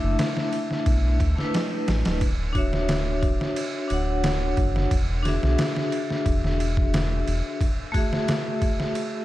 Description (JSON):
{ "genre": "trip hop", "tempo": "89 BPM", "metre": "4/4", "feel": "straight", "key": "unclear", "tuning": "A4 = 440 Hz", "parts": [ { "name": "vibraphone with hard mallets", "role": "accompaniment", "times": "0.0-9.2 s", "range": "A3 to F#5", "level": "-27 LUFS", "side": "left 1 dB", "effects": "tremolo, tape echo" }, { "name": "round analog bass", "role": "bass", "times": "0.0-7.4 s", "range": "D1 to D2", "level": "-24 LUFS", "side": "equal", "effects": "none" }, { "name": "trip hop sampler-style drum kit", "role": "drums", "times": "0.2-9.1 s", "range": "kick drum, ride cymbal, snare drum", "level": "-25 LUFS", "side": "equal", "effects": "overdrive" } ], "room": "digital ambience", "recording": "dark, warm production", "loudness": "-22 LUFS", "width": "side -15 dB against mid", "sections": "0.0-9.2 A section", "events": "none", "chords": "0.0 Bm7; 2.2 Dmaj9; 4.9 E9; 7.6 F#m9" }